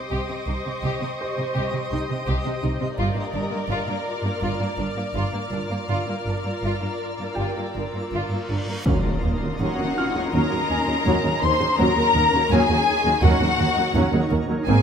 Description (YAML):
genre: cinematic, suspense film score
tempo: 83 BPM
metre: 4/4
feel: straight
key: unclear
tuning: A4 = 440 Hz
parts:
  - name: muted symphonic violin section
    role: melody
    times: 0.0-14.8 s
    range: D5 to C6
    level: -27 LUFS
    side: left 3 dB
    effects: none
  - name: muted symphonic violin section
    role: second line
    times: 0.0-14.8 s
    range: Bb3 to C5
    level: -28 LUFS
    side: left 2 dB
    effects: none
  - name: twinkling granular texture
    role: sustained chords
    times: 0.0-14.8 s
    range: Db4 to Eb5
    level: -31 LUFS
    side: equal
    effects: built-in reverb
  - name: clear grand piano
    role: texture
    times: 0.0-14.8 s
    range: F4 to F6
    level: -34 LUFS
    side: left 2 dB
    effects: none
  - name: muted symphonic violin section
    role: texture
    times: 0.0-14.8 s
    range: Bb5 to Db7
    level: -36 LUFS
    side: left 5 dB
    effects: none
  - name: muted symphonic cello section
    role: bass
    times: 0.1-14.7 s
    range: Eb2 to C3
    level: -28 LUFS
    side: right 1 dB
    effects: none
  - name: muted symphonic double bass section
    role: bass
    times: 0.1-14.7 s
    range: G1 to Eb2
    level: -25 LUFS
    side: right 2 dB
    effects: none
  - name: reverse cymbal and impact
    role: sound effects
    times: 8.6-11.8 s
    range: none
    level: -30 LUFS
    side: equal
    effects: none
  - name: muted chamber viola section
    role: accompaniment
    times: 8.9-14.8 s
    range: Db3 to Db4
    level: -25 LUFS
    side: right 1 dB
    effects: none
room: moderate scoring stage reverb, RT60 1.5 s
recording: none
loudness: -20 LUFS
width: side -7 dB against mid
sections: 0.0-8.9 A section; 8.9-14.8 A section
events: reverse cymbal 8.6; impact 8.9-11.8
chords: 0.0 Cm; 3.0 Gm7; 8.9 Ebm7